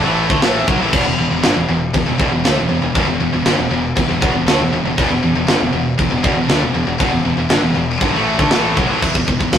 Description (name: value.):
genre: heavy metal.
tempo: 118 BPM.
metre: 4/4.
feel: straight.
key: E minor.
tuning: A4 = 440 Hz.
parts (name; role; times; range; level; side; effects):
heavy high-gain guitar; riff; 0.0-9.6 s; E2 to A3; -19 LUFS; left 4 dB; distortion.
overdriven semi-hollow guitar; riff; 0.0-9.0 s; E2 to A3; -21 LUFS; equal; none.
scooped high-gain guitar; riff; 0.0-9.6 s; E2 to A3; -22 LUFS; right 5 dB; distortion.
growling fingered electric bass; bass; 0.0-9.6 s; E1 to D2; -24 LUFS; equal; overdrive.
tight metal drum kit; drums; 0.3-9.6 s; china cymbal, crash cymbal, hi-hat, kick drum, snare drum; -18 LUFS; equal; none.
room: moderate studio reverb, RT60 0.6 s.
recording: rough rehearsal-room recording, tube saturation.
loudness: -13 LUFS.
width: side -9 dB against mid.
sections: 0.0-9.0 A section.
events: none.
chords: 0.0 Em; 9.0 E5.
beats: 0.42 | 0.93 1.43 1.94 2.45 | 2.95 3.46 3.97 4.47 | 4.98 5.48 5.99 6.50 | 7.00 7.51 8.02 8.52 | 9.03 9.53.